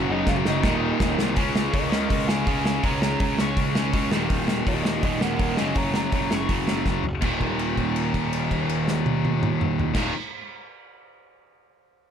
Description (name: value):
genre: punk rock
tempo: 164 BPM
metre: 4/4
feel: straight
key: unclear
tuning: A4 = 440 Hz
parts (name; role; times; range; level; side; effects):
- lead guitar through a small cranked amp; melody; 0.0-6.5 s; Eb4 to Db6; -30 LUFS; right 1 dB; overdrive, digital delay
- distorted electric guitar; riff; 0.0-10.1 s; Eb2 to Db4; -28 LUFS; right 11 dB; distortion
- tight distorted guitar; riff; 0.0-10.1 s; Eb2 to Db4; -28 LUFS; left 13 dB; distortion
- fuzz picked electric bass; bass; 0.0-10.1 s; Eb1 to Db2; -29 LUFS; equal; overdrive
- loose indie drum kit; drums; 0.3-10.0 s; crash cymbal, hi-hat, kick drum, snare drum, toms; -26 LUFS; equal; none
room: light reverb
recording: none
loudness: -21 LUFS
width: side -8 dB against mid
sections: 0.0-1.4 A section; 1.4-7.2 B section; 7.2-10.2 C section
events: drum fill 0.0-1.4, 6.9-7.2; lead electric guitar solo 1.4-7.2; held note 7.2-9.9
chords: 0.0 Gb5; 0.6 Eb5; 1.4 Db5; 4.1 Eb; 5.6 Gb5; 7.2 Eb5